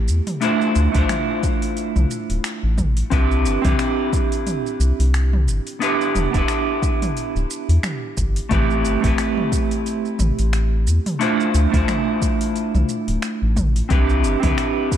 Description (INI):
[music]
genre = sunset chillout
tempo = 89 BPM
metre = 4/4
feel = swing 57% on 16ths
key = unclear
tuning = A4 = 440 Hz
[part]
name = clean electric guitar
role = accompaniment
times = 0.0-15.0 s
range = A3 to C5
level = -21 LUFS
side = right 1 dB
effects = auto-pan, vintage 12-bit sampler grit, ping-pong delay
[part]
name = round analog bass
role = bass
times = 0.0-14.5 s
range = D1 to E2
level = -18 LUFS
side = equal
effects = tube saturation
[part]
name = deep house drum kit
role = drums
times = 0.1-15.0 s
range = finger snaps, hi-hat, shaker, toms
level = -28 LUFS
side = right 1 dB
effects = overdrive, small room ambience
[part]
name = electronic kick drum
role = drums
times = 0.9-15.0 s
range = none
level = -23 LUFS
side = equal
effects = overdrive, small room ambience
[sound]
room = light reverb, digital ambience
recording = dark, warm production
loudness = -17 LUFS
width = side -10 dB against mid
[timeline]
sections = 0.0-15.0 A section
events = none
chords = 0.4 Dm9; 3.1 Cmaj7; 5.8 Em7; 8.5 Am7; 11.2 Dm9; 13.9 Cmaj7